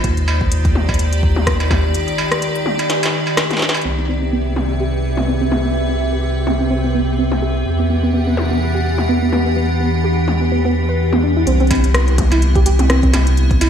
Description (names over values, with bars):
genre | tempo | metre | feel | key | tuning
IDM | 126 BPM | 4/4 | swing 56% on 16ths | C lydian | A4 = 440 Hz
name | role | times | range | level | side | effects
icy glass pad | sustained chords | 0.0-13.7 s | C3 to F#5 | -20 LUFS | left 1 dB | chorus, built-in reverb, sidechain pumping
round analog bass | bass | 0.0-13.7 s | C2 to E2 | -17 LUFS | equal | none
electronic kick drum | drums | 0.0-1.8, 11.7-13.6 s | none | -19 LUFS | equal | none
industrial drum kit | drums | 0.0-13.7 s | hi-hat, rim click, snare drum, struck metal, toms | -21 LUFS | left 1 dB | ping-pong delay
soft round pluck | arpeggios | 3.8-13.7 s | B3 to B4 | -20 LUFS | right 2 dB | analog chorus, digital delay
flickering grainy texture | texture | 4.3-11.5 s | G4 | -30 LUFS | right 1 dB | built-in reverb
room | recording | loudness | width
moderate lush hall reverb, RT60 1.8 s, digital ambience | played on a big sound system in a bare room, large studio reverb | -14 LUFS | side -8 dB against mid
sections
0.0-3.8 A section; 3.8-11.5 B section; 11.5-13.7 C section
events
drum fill 2.9-3.8; filter sweep on synth arpeggio sound 3.8-11.5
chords
0.0 Ebmaj7; 3.8 Cmaj7; 7.7 Em9; 11.5 Cmaj7